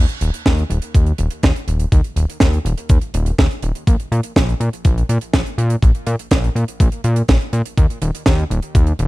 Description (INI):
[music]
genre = italo disco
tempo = 123 BPM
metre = 4/4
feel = straight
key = unclear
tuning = A4 = 439 Hz
[part]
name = fat analog bass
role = bass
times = 0.0-9.1 s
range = Eb1 to Bb2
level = -18 LUFS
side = equal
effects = none
[part]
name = tight funk drum kit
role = drums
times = 0.1-9.1 s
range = hi-hat, snare drum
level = -21 LUFS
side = right 2 dB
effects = none
[part]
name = electronic kick drum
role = drums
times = 0.5-8.8 s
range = none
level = -14 LUFS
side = equal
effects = none
[sound]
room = little or no reverb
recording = dry, close 1970s-style studio recording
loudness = -14 LUFS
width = side -19 dB against mid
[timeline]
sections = 0.0-9.1 A section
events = none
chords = none